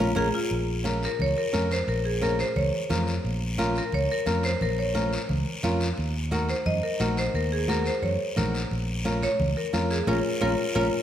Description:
latin, cumbia; 176 BPM; 4/4; straight; Bb minor; A4 = 439 Hz
marimba with medium hard mallets; melody; 0.0-10.9 s; F4 to Eb5; -28 LUFS; equal
flamenco guitar; accompaniment; 0.0-10.9 s; Db4 to Bb4; -31 LUFS; right 1 dB
fretless electric bass; bass; 0.0-10.9 s; Bb1 to Gb2; -28 LUFS; equal
congas; percussion; 0.2-10.8 s; -32 LUFS; left 2 dB
guiro; percussion; 0.2-10.8 s; -36 LUFS; left 3 dB
moderate scoring stage reverb, RT60 1.6 s; -24 LUFS; side -10 dB against mid
0.5-11.0 A section
band accent 0.0-0.5, 10.1-11.0
0.0 Bbm; 6.0 Ebm; 8.7 Bbm
0.17 | 0.51 0.85 1.19 1.53 | 1.88 2.22 2.56 2.90 | 3.24 3.58 3.93 4.27 | 4.61 4.95 5.29 5.64 | 5.98 6.32 6.66 7.00 | 7.34 7.69 8.03 8.37 | 8.71 9.05 9.39 9.73 | 10.08 10.42 10.76

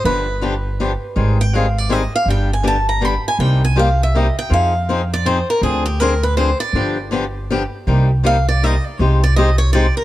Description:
acoustic string swing (jazz manouche); 161 BPM; 3/4; swing 62% on 8ths; C minor; A4 = 440 Hz
picked swing-style acoustic guitar; melody; 0.0-10.0 s; G4 to B5; -20 LUFS; right 1 dB
upright bass; bass; 0.0-9.9 s; G1 to F2; -17 LUFS; equal
picked swing-style acoustic guitar; accompaniment; 0.1-9.9 s; C3 to Ab4; -21 LUFS; left 3 dB
light reverb; dark, warm production; -14 LUFS; side -15 dB against mid
0.0-7.9 A section; 7.9-10.0 A section
steel-string acoustic guitar solo 0.0-7.9, 7.9-10.0
0.0 G7; 1.2 Abmaj7; 2.3 G; 3.4 Cm7; 4.5 Fm7; 5.6 Dm7b5; 6.8 G7; 7.9 Cm7; 9.0 Abmaj7/C
| 0.04 0.42 0.79 | 1.16 1.53 1.91 | 2.28 2.65 3.02 | 3.40 3.77 4.14 | 4.51 4.89 5.26 | 5.63 6.00 6.38 | 6.75 7.12 7.50 | 7.87 8.24 8.62 | 8.99 9.36 9.74

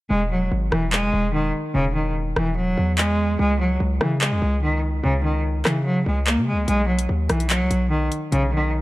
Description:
hip hop, drill; 146 BPM; 4/4; half-time; A4 = 436 Hz
rich cello; melody; 0.1-8.7 s; Db3 to Bb3; -22 LUFS; equal
hard-hitting 808-style bass; bass; 0.1-8.8 s; E1 to Db3; -23 LUFS; equal
drill drum kit; drums; 0.7-8.4 s; handclaps, hi-hat, rim click; -24 LUFS; equal
light reverb; dark, warm production; -19 LUFS; side -18 dB against mid
0.1-8.8 A section
hi-hats muted 0.1-6.7
0.1 E; 3.4 Db5; 6.7 B5
| 0.10 0.52 0.93 1.34 | 1.75 2.16 2.57 2.98 | 3.39 3.80 4.21 4.62 | 5.04 5.45 5.86 6.27 | 6.68 7.09 7.50 7.91 | 8.32 8.73

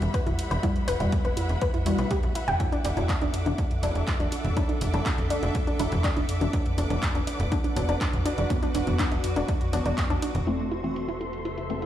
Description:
melodic techno; 122 BPM; 4/4; straight; A4 = 440 Hz
warm studio string section; sustained chords; 0.0-11.9 s; G3 to D6; -36 LUFS; left 1 dB; sidechain pumping, low-pass filter
filtered dub chord stab; stabs; 0.0-11.9 s; E3 to F#4; -34 LUFS; left 1 dB; phaser, cassette tape, sidechain pumping, tape echo
tight sequencer bass; bass; 0.0-11.9 s; E1 to E2; -29 LUFS; equal; sidechain pumping
techno drum kit; drums; 0.0-11.9 s; handclaps, hi-hat, toms; -32 LUFS; equal; overdrive, low-pass filter on hats, small room ambience, low-pass filter on toms, low-pass filter on cymbals, low-pass filter on snare
granular cloud pad; texture; 0.1-11.9 s; D4 to F#5; -38 LUFS; right 1 dB; built-in reverb, sidechain pumping
warbly dusty pluck; arpeggios; 0.1-11.9 s; D4 to G5; -31 LUFS; equal; chorus, sidechain pumping, tape echo
electronic kick drum; drums; 0.1-10.1 s; -28 LUFS; equal; small room ambience
overtone-sweeping drone; drone; 10.8-11.9 s; E2 to C3; -40 LUFS; equal; chorus, built-in reverb, sidechain pumping
moderate concert hall reverb, RT60 2.2 s; played on a big sound system in a bare room, stone room reverb; -24 LUFS; side -11 dB against mid
0.0-10.5 A section; 10.5-11.9 B section
fade-in on ambient pad 0.0-10.5; filter sweep on drum 10.5-11.9
0.0 Emadd9; 2.6 Dadd9/E; 10.5 Am/E
0.14 | 0.63 1.12 1.62 2.11 | 2.60 3.09 3.58 4.08 | 4.57 5.06 5.55 6.04 | 6.53 7.03 7.52 8.01 | 8.50 8.99 9.48 9.98 | 10.47 10.96 11.45

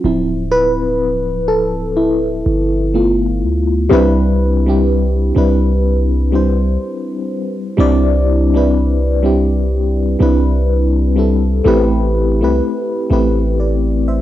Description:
contemporary R&B; 62 BPM; 4/4; swing 58% on 16ths; C major; A4 = 438 Hz
FM electric piano with auto-pan; accompaniment; 0.0-14.2 s; F3 to E5; -15 LUFS; left 1 dB; phaser, cassette tape
long sustained 808-style bass; bass; 0.0-14.2 s; D1 to D2; -16 LUFS; equal
light reverb, digital ambience; home recording on cassette; -12 LUFS; side -13 dB against mid
0.0-3.9 A section; 3.9-14.2 B section
FM electric piano solo 0.0-3.9
0.0 Dm9; 2.9 G9; 3.9 Cmaj9; 11.7 Am9
| 0.04 1.01 1.97 2.94 | 3.91 4.88 5.84 6.81 | 7.78 8.75 9.72 10.68 | 11.65 12.62 13.59

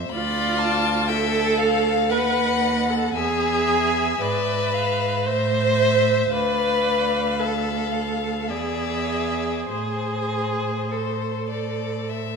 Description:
classical, slow romantic movement for string quartet; 49-61 BPM; 3/4; rubato; A minor; A4 = 440 Hz
rich violin; melody; 0.0-12.4 s; C5 to B5; -28 LUFS; left 11 dB
rich violin; second line; 0.0-12.4 s; C5 to F#5; -30 LUFS; left 5 dB
clear viola; accompaniment; 0.1-12.4 s; F4 to C5; -22 LUFS; right 1 dB
rich cello; bass; 0.1-12.4 s; D2 to A2; -26 LUFS; right 4 dB
moderate scoring stage reverb, RT60 1.8 s; minimal, uncompressed stereo recording; -20 LUFS; side -5 dB against mid
0.0-12.4 A section
0.1 Bdim/D; 2.1 B/D#; 3.2 E; 5.3 Am; 6.3 Bdim/D; 8.5 E7; 9.7 Am
| 0.11 1.09 2.11 | 3.16 4.21 5.26 | 6.33 7.39 8.50 | 9.69 10.90 12.09

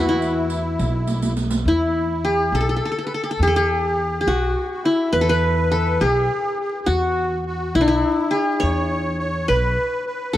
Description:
Arabic maqam ensemble; 69 BPM (dotted quarters); 6/8; straight; E maqam rast; A4 = 440 Hz
qanun; melody; 0.0-10.4 s; D4+50c to C#5; -20 LUFS; left 1 dB
musette accordion; second line; 0.0-10.4 s; E4 to C#5; -27 LUFS; equal
upright bass; bass; 0.0-10.4 s; B1 to E2; -23 LUFS; equal
riq; percussion; 0.2-1.6 s; -27 LUFS; right 3 dB
light reverb; vinyl crackle; -18 LUFS; side -13 dB against mid
0.0-1.7 A section; 1.7-10.4 B section
drum fill 1.1-1.7
0.79 | 1.66 2.53 | 3.40 4.27 | 5.14 6.01 | 6.88 7.75 | 8.62 9.48 | 10.35

